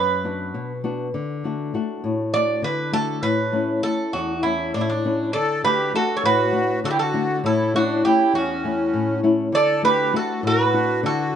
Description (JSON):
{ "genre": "greek folk, Greek bouzouki band", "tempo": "200 BPM (eighths)", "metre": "7/8", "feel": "straight", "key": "D major", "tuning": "A4 = 440 Hz", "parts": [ { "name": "Greek bouzouki", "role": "melody", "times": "0.0-11.4 s", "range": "D4 to D5", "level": "-22 LUFS", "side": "right 4 dB", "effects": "none" }, { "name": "flamenco guitar", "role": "accompaniment", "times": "0.0-11.4 s", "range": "E2 to F#4", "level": "-22 LUFS", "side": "left 3 dB", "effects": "none" }, { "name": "accordion", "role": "second line", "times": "5.3-11.4 s", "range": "C#4 to A4", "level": "-25 LUFS", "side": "left 1 dB", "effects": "light tremolo tuning" } ], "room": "moderate plate reverb, RT60 2.3 s", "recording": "nothing above 10.8 kHz", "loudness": "-19 LUFS", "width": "side -8 dB against mid", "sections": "0.0-5.3 A section; 5.3-11.4 B section", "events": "none", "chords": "0.0 Bm; 1.1 D; 3.2 A; 5.3 D; 7.4 A; 9.5 D", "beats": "0.24 0.54 0.84 | 1.14 1.44 1.74 2.04 2.34 2.64 2.94 | 3.24 3.54 3.84 4.14 4.44 4.74 5.04 | 5.34 5.64 5.94 6.24 6.54 6.84 7.14 | 7.44 7.74 8.04 8.34 8.63 8.94 9.23 | 9.53 9.83 10.13 10.43 10.73 11.03 11.33" }